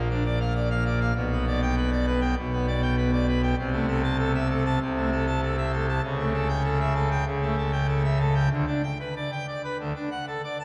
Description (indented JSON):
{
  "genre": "classical, organ toccata",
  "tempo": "98 BPM",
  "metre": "4/4",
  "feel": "straight",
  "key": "G major",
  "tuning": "A4 = 441 Hz",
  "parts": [
    { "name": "pipe organ, full organ", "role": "solo", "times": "0.0-10.6 s", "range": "Bb1 to A5", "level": "-26 LUFS", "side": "equal", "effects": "none" }
  ],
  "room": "wet cathedral reverb, RT60 4.7 s",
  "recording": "vinyl crackle",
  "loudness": "-26 LUFS",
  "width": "mono",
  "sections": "0.0-10.6 A section",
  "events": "none",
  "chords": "0.0 Bb; 1.2 G/B; 3.6 Am/C; 6.0 A7/C#; 8.5 G/D; 9.8 D"
}